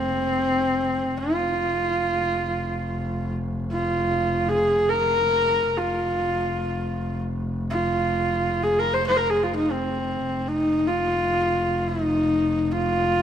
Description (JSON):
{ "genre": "mongolian traditional, Mongolian folk", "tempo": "free time", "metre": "none", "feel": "none", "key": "F yu mode", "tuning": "A4 = 440 Hz", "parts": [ { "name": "rich horsehead fiddle", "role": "melody", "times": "0.0-13.2 s", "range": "C4 to C5", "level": "-22 LUFS", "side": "equal", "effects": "none" }, { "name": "clear double bass", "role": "drone", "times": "0.0-13.2 s", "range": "F1", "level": "-29 LUFS", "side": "equal", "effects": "none" } ], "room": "moderate concert hall reverb, RT60 2.5 s", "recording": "none", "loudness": "-21 LUFS", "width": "side -9 dB against mid", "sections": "0.0-13.2 A section", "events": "none", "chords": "none", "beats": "free time" }